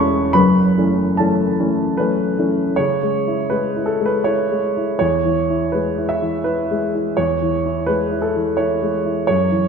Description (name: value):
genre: neoclassical minimalist piano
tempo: 72-87 BPM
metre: 3/4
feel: rubato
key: unclear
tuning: A4 = 440 Hz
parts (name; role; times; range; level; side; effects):
- warm upright piano; solo; 0.0-9.7 s; E1 to C#6; -16 LUFS; equal; none
room: wet scoring stage reverb, RT60 1.9 s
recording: minimal, uncompressed stereo recording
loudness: -16 LUFS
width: side -6 dB against mid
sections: 0.0-2.8 A section; 2.8-9.7 B section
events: none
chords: 0.4 F#m7; 2.8 C#m; 5.0 E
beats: | 0.37 1.19 1.99 | 2.79 3.53 4.26 | 5.01 5.73 6.45 | 7.17 7.88 8.59 | 9.28